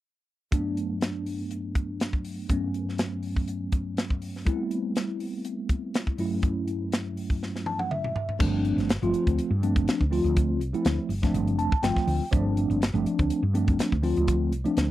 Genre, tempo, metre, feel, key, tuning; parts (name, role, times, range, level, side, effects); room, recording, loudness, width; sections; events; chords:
electric jazz fusion; 122 BPM; 4/4; straight; G lydian; A4 = 440 Hz
mellow tine electric piano; accompaniment; 0.5-14.9 s; G2 to A5; -27 LUFS; equal; medium stereo tremolo, phaser
crisp fusion drum kit; drums; 0.5-14.9 s; crash cymbal, hi-hat, kick drum, snare drum, toms; -27 LUFS; equal
woody fretless electric bass; bass; 8.4-14.9 s; F1 to G2; -26 LUFS; equal
little or no reverb; dry, close 1970s-style studio recording; -24 LUFS; side -14 dB against mid
0.5-8.4 A section; 8.4-14.9 B section
drum fill 7.4-8.4; tine electric piano fill 7.4-8.4, 11.3-12.3
0.5 Gmaj9; 4.5 Am9/G; 6.2 A6; 8.4 G9sus4